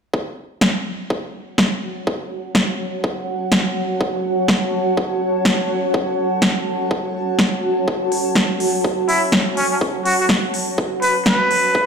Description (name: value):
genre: bass house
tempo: 124 BPM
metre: 4/4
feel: swing 61% on 16ths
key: F# minor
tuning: A4 = 442 Hz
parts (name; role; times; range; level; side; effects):
- electronic kick drum; drums; 0.1-11.9 s; none; -22 LUFS; equal; overdrive, high-pass filter on kick
- granular cloud pad; texture; 1.9-11.9 s; F#4 to A5; -21 LUFS; right 1 dB; built-in reverb, sidechain pumping
- big-room dance drum kit; drums; 0.6-11.6 s; hi-hat, snare drum; -20 LUFS; equal; overdrive
- trumpet with straight mute; melody; 9.1-11.9 s; C#4 to B4; -18 LUFS; equal; tape echo
room: moderate plate reverb, RT60 2.5 s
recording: played on a big sound system in a bare room, large studio reverb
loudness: -17 LUFS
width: side -6 dB against mid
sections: 0.1-11.9 A section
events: none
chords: 0.1 F#m